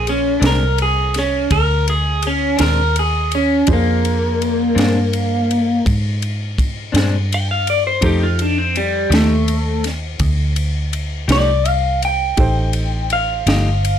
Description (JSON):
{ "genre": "slow blues", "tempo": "55 BPM (dotted quarters)", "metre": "12/8", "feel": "straight", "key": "Bb mixolydian", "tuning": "A4 = 441 Hz", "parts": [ { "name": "electric guitar through a small old amp", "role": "melody", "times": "0.0-14.0 s", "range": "G3 to G5", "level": "-17 LUFS", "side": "equal", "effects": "phaser" }, { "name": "warm upright piano", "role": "accompaniment", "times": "0.0-14.0 s", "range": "Bb3 to C5", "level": "-30 LUFS", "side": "right 4 dB", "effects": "plate reverb" }, { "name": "vintage muted fingered electric bass", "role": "bass", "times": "0.0-14.0 s", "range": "G1 to Ab2", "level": "-19 LUFS", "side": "equal", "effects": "none" }, { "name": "compact cocktail drum kit", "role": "drums", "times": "0.1-14.0 s", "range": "kick drum, ride cymbal, snare drum", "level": "-23 LUFS", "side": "equal", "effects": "none" }, { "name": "clean electric guitar", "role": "accompaniment", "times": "0.4-13.7 s", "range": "Bb2 to G4", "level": "-23 LUFS", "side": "left 5 dB", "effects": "harmonic tremolo" } ], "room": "light reverb", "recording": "none", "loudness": "-14 LUFS", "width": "side -9 dB against mid", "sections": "0.0-14.0 A section", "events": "clean electric guitar solo 0.0-14.0", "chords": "0.0 Bb9; 8.0 F9" }